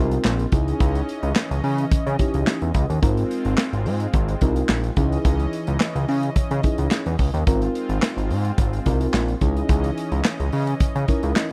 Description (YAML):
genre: early-eighties boogie funk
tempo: 108 BPM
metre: 4/4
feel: straight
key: unclear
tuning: A4 = 440 Hz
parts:
  - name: mellow FM electric piano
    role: accompaniment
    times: 0.0-11.5 s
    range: C4 to Bb4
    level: -28 LUFS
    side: equal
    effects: chorus
  - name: brassy analog pad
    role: sustained chords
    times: 0.0-11.5 s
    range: Fb3 to Eb5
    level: -33 LUFS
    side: equal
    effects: chorus
  - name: fat analog bass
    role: bass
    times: 0.0-11.3 s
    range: Ab1 to Db3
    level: -25 LUFS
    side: equal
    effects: none
  - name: modern studio drum kit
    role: drums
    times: 0.1-11.5 s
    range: handclaps, hi-hat, kick drum, snare drum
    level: -24 LUFS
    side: equal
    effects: none
room: small room ambience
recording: dry, close 1970s-style studio recording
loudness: -22 LUFS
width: mono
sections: 0.0-11.5 A section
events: none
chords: 0.0 Ab69; 0.5 Dbmadd9; 3.0 Ab69; 5.0 Dbmadd9; 7.5 Ab69; 9.4 Dbmadd9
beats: 0.25 | 0.81 1.36 1.92 2.47 | 3.03 3.58 4.14 4.69 | 5.25 5.80 6.36 6.92 | 7.47 8.03 8.58 9.14 | 9.69 10.25 10.80 11.36